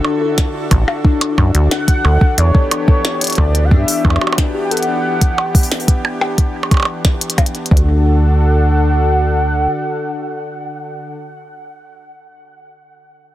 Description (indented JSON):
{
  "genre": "IDM",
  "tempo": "90 BPM",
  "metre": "4/4",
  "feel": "straight",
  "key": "D major",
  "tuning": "A4 = 445 Hz",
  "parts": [
    { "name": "warm analog pad", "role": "sustained chords", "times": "0.0-11.1 s", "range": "D3 to A4", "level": "-23 LUFS", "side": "right 1 dB", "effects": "chorus" },
    { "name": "harp-like synth pluck", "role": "arpeggios", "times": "0.0-8.0 s", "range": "D4 to A4", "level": "-22 LUFS", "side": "left 6 dB", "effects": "chorus, digital delay" },
    { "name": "glitchy drum kit", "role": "drums", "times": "0.0-7.9 s", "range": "hi-hat, percussion blips, snare drum", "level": "-19 LUFS", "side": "right 1 dB", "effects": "soft clipping on snare" },
    { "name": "flickering grainy texture", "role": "texture", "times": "0.0-5.1 s", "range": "E4 to E5", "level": "-32 LUFS", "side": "right 2 dB", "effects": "none" },
    { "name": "electronic kick drum", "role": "drums", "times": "0.4-7.8 s", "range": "none", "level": "-12 LUFS", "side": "equal", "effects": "none" },
    { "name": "deep acid bass", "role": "bass", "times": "0.7-9.7 s", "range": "A1 to G2", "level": "-13 LUFS", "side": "equal", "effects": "tube saturation" },
    { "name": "warm velvety synth lead", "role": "melody", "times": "1.7-11.1 s", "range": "C#5 to G5", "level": "-23 LUFS", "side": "equal", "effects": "chorus, tape echo" }
  ],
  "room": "digital ambience",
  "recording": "dense, heavily limited modern master",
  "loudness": "-12 LUFS",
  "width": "side -14 dB against mid",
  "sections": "0.0-7.7 A section; 7.7-10.4 B section",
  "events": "none",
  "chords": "0.0 D; 2.4 Em7; 7.7 D"
}